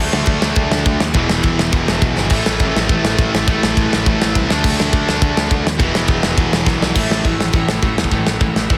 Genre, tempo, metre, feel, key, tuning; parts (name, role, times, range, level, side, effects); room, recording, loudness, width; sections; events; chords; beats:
punk rock; 207 BPM; 4/4; straight; A4 = 437 Hz
distorted electric guitar; riff; 0.0-8.8 s; E2 to D4; -26 LUFS; equal; distortion
distorted electric guitar; riff; 0.0-8.8 s; E2 to D4; -24 LUFS; equal; overdrive
overdriven electric guitar; riff; 0.0-8.8 s; E2 to D4; -26 LUFS; equal
fuzz picked electric bass; bass; 0.0-8.8 s; E1 to A2; -24 LUFS; equal; overdrive
big rock drum kit; drums; 0.1-8.8 s; crash cymbal, kick drum, ride cymbal, snare drum; -19 LUFS; equal
light reverb; dense, heavily limited modern master; -16 LUFS; mono
0.0-7.0 A section; 7.0-8.8 B section
drum fill 2.2, 6.7
0.0 D5; 1.2 E5; 2.3 A5; 4.5 D5; 5.8 E5; 7.0 A5
0.28 0.57 0.86 | 1.16 1.45 1.74 2.03 | 2.32 2.61 2.90 3.19 | 3.48 3.77 4.06 4.35 | 4.64 4.93 5.22 5.51 | 5.80 6.09 6.38 6.67 | 6.96 7.25 7.54 7.83 | 8.12 8.41 8.71